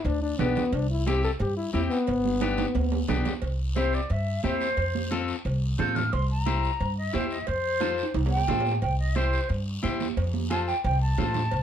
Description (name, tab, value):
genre	latin, cumbia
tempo	178 BPM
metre	4/4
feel	straight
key	C major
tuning	A4 = 442 Hz
part	warm trombone	second line	0.0-3.0 s	B3 to A4	-27 LUFS	left 3 dB	none
part	upright bass	bass	0.0-11.6 s	G1 to A2	-27 LUFS	equal	none
part	guiro	percussion	0.0-11.6 s	none	-42 LUFS	left 4 dB	none
part	congas	percussion	0.1-11.6 s	none	-32 LUFS	right 8 dB	none
part	cowbell and timbales	percussion	0.1-11.6 s	none	-36 LUFS	right 6 dB	none
part	clean electric guitar	accompaniment	0.4-11.4 s	B3 to C5	-31 LUFS	left 6 dB	none
part	concert flute	melody	3.8-11.6 s	C5 to G6	-28 LUFS	equal	none
room	light reverb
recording	dark, warm production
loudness	-24 LUFS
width	side -9 dB against mid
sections	0.0-3.4 A section; 3.4-11.6 B section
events	trombone solo 0.0-3.4; drum fill 2.4-3.4, 7.8-8.8; flute solo 3.4-11.6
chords	0.0 G; 0.7 C; 2.1 G; 3.4 C; 4.8 F; 6.1 C; 7.5 F; 8.8 C; 10.2 F